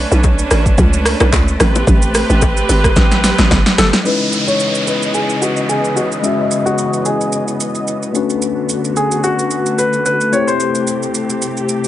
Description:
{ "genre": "amapiano", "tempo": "110 BPM", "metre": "4/4", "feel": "swing 55% on 16ths", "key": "unclear", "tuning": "A4 = 440 Hz", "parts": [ { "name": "warm studio string section", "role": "sustained chords", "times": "0.0-11.9 s", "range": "C3 to D#5", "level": "-20 LUFS", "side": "right 1 dB", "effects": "sidechain pumping, low-pass filter" }, { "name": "hollow log drum bass", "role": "bass", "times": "0.0-3.9 s", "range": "G1 to C#2", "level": "-15 LUFS", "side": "equal", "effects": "none" }, { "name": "deep house drum kit", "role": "drums", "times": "0.1-11.9 s", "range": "handclaps, hi-hat, kick drum, rim click, shaker, snare drum", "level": "-16 LUFS", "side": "right 1 dB", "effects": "overdrive" }, { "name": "bongos and congas", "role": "percussion", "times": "0.2-4.0 s", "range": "none", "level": "-20 LUFS", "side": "left 4 dB", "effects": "none" }, { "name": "bright concert grand piano", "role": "melody", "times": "3.8-11.5 s", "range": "E4 to C#5", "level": "-18 LUFS", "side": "left 1 dB", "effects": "low-pass filter" }, { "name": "tine electric piano", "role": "accompaniment", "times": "4.0-11.9 s", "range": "G#3 to D#5", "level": "-20 LUFS", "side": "left 6 dB", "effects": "low-pass filter" }, { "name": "downlifter", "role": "sound effects", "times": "4.1-8.4 s", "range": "none", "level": "-22 LUFS", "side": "right 1 dB", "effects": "none" } ], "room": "little or no reverb", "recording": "nothing above 10.6 kHz", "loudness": "-12 LUFS", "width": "side -13 dB against mid", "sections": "0.0-4.1 A section; 4.1-11.9 B section", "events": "drop 0.0-4.1; drum fill 3.0-4.1; filter sweep 4.1-11.9", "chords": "0.0 Bm9; 1.6 Am9; 4.1 C#m9; 8.1 Bm9; 10.3 Am7", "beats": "0.24 0.78 1.33 | 1.87 2.42 2.96 3.51 | 4.05 4.60 5.15 5.69 | 6.24 6.78 7.33 7.87 | 8.42 8.96 9.51 10.05 | 10.60 11.15 11.69" }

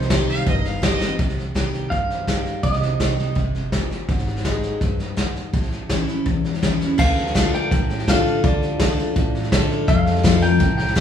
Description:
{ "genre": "honky-tonk and classic country", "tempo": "166 BPM", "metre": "4/4", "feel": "straight", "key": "C minor, D minor from 7.0 s", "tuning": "A4 = 440 Hz", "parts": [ { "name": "clean electric guitar", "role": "melody", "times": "0.0-3.9, 7.0-11.0 s", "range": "Eb4 to G5", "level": "-25 LUFS", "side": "right 2 dB", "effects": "none" }, { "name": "picked steel-string acoustic guitar", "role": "accompaniment", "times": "0.0-11.0 s", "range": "E2 to Ab4", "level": "-23 LUFS", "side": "left 2 dB", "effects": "none" }, { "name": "upright bass", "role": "bass", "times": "0.0-11.0 s", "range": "E1 to F2", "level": "-29 LUFS", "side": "right 1 dB", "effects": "none" }, { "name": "vintage brush drum kit", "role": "drums", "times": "0.0-11.0 s", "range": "crash cymbal, hi-hat, kick drum, snare drum", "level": "-21 LUFS", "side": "equal", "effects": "none" }, { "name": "clear fiddle", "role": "second line", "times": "0.3-1.1 s", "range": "Eb5 to F5", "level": "-28 LUFS", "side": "right 3 dB", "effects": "none" } ], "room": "wet large studio reverb, RT60 1.2 s", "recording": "band playing live in one room, small room ambience", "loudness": "-18 LUFS", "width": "side -9 dB against mid", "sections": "0.0-1.2 A section; 1.2-7.0 B section; 7.0-11.0 A section", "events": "drum fill 1.0", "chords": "0.0 Cm; 4.1 Ab; 5.5 A7; 7.0 Dm; 9.9 F", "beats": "0.10 0.47 0.83 | 1.19 1.55 1.91 2.28 | 2.64 3.00 3.36 3.73 | 4.09 4.45 4.82 5.18 | 5.54 5.90 6.26 6.63 | 6.99 7.35 7.71 8.07 | 8.44 8.80 9.16 9.52 | 9.88 10.24 10.60 10.96" }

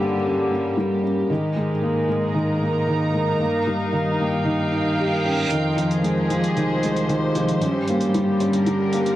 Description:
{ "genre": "piano and strings electronica", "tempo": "114 BPM", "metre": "4/4", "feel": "straight", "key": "F minor", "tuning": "A4 = 440 Hz", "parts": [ { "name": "warm studio string section", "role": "sustained chords", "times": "0.0-9.2 s", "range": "D3 to Bb5", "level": "-24 LUFS", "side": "right 1 dB", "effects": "cassette tape" }, { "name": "felt-muted upright piano", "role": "riff", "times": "0.0-9.2 s", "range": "Eb3 to G4", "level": "-21 LUFS", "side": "left 1 dB", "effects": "cassette tape, tape echo" }, { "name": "warm studio cello section", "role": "bass", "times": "0.0-8.6 s", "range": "C2 to Ab2", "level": "-30 LUFS", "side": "equal", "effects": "none" }, { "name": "reverse cymbal and riser", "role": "sound effects", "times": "4.9-9.2 s", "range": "none", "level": "-35 LUFS", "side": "right 2 dB", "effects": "none" }, { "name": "electronic hi-hat", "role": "drums", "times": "5.5-9.2 s", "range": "none", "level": "-37 LUFS", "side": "right 1 dB", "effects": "cassette tape" } ], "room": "moderate studio reverb, RT60 0.6 s", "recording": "home recording on cassette", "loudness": "-19 LUFS", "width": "side -14 dB against mid", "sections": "0.0-5.5 A section; 5.5-9.2 B section", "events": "reverse cymbal 4.9-5.5; build-up 5.5-9.2; filter sweep 5.5-9.2", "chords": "0.0 Gdim; 1.3 Absus2; 3.4 Eb7/G; 5.5 Fm7; 7.6 Gdim", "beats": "0.25 0.78 | 1.30 1.83 2.36 2.88 | 3.41 3.94 4.46 4.99 | 5.51 6.04 6.57 7.09 | 7.62 8.14 8.67" }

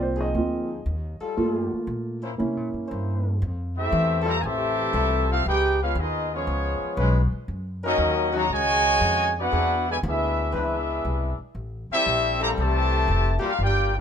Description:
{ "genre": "jazz, big band swing", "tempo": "118 BPM", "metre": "4/4", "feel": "swing 68% on 8ths", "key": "unclear", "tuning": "A4 = 440 Hz", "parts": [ { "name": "warm grand piano", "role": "accompaniment", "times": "0.0-3.4 s", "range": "A3 to Eb5", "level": "-26 LUFS", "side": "right 2 dB", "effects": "none" }, { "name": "upright bass", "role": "bass", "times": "0.0-14.0 s", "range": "F1 to C3", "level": "-26 LUFS", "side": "equal", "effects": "none" }, { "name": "bright trombone section", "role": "sustained chords", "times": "0.2-13.5 s", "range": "E3 to C5", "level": "-31 LUFS", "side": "left 4 dB", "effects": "none" }, { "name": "warm trumpet section", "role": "melody", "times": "3.8-14.0 s", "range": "Cb4 to Bb5", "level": "-24 LUFS", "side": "equal", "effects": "none" }, { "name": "warm trombone section", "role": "second line", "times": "3.8-14.0 s", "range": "B2 to G4", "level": "-28 LUFS", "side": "left 1 dB", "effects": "none" } ], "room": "light reverb", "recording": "minimal, uncompressed stereo recording", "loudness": "-22 LUFS", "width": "side -8 dB against mid", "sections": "0.0-3.4 A section; 3.4-14.0 B section", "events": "grand piano solo 0.0-3.4", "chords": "0.0 Ab6; 1.4 Gm9; 2.4 C7b9; 3.4 Fmaj9; 5.4 Db7; 7.5 Gb6; 9.5 E7b13; 11.6 Am7", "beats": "0.35 0.86 | 1.37 1.88 2.39 2.90 | 3.41 3.92 4.43 4.94 | 5.45 5.95 6.46 6.97 | 7.48 7.99 8.50 9.01 | 9.52 10.03 10.54 11.05 | 11.56 12.07 12.58 13.09 | 13.60" }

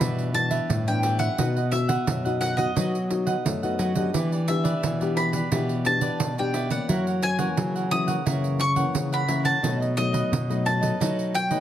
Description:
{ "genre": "samba and choro", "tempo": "87 BPM", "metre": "4/4", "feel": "straight", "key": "E minor", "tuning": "A4 = 441 Hz", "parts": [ { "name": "bowl-back mandolin", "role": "melody", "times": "0.0-11.6 s", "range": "D#5 to D#6", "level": "-28 LUFS", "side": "equal", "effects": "none" }, { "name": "cavaquinho", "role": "accompaniment", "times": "0.0-11.6 s", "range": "D4 to F#5", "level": "-31 LUFS", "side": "right 6 dB", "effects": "none" }, { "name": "nylon-string guitar", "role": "accompaniment", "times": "0.0-11.6 s", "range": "F#2 to G4", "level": "-29 LUFS", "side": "left 5 dB", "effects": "none" }, { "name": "nylon-string guitar", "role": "bass", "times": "0.0-11.6 s", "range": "A2 to A3", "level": "-26 LUFS", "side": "equal", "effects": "none" }, { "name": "pandeiro", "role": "percussion", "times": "0.0-11.6 s", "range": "none", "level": "-29 LUFS", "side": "right 4 dB", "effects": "none" } ], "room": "light reverb", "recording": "close, detailed microphones", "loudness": "-22 LUFS", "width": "side -11 dB against mid", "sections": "0.0-11.6 A section", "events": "none", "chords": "0.0 Em7/G; 1.4 B; 4.1 Em7; 6.9 F#7; 9.6 B7", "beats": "0.01 0.69 | 1.39 2.07 2.76 3.45 | 4.14 4.83 5.52 6.20 | 6.89 7.58 8.26 8.95 | 9.64 10.32 11.01" }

